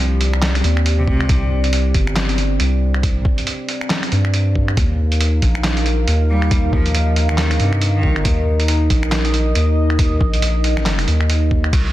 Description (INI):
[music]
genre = deep dubstep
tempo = 138 BPM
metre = 4/4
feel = swing 59% on 16ths, half-time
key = unclear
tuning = A4 = 439 Hz
[part]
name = clear cello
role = melody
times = 0.0-1.7, 6.3-8.2 s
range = C3 to G3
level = -26 LUFS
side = equal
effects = dub echo
[part]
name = dark analog pad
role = sustained chords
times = 0.0-11.9 s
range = C4 to F5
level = -24 LUFS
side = equal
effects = chorus, phaser
[part]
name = soft dub sub bass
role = bass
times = 0.0-11.9 s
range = G1 to G2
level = -17 LUFS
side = equal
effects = none
[part]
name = trip hop sampler-style drum kit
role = drums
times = 0.2-11.8 s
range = finger snaps, handclaps, hi-hat, ride cymbal, snare drum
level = -22 LUFS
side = right 1 dB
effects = none
[part]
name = electronic kick drum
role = drums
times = 1.1-11.8 s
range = none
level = -18 LUFS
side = equal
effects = none
[sound]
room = light reverb, digital ambience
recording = dense, heavily limited modern master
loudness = -14 LUFS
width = side -15 dB against mid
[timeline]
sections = 0.0-11.9 A section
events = none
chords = 0.0 Cm; 4.8 Ebsus2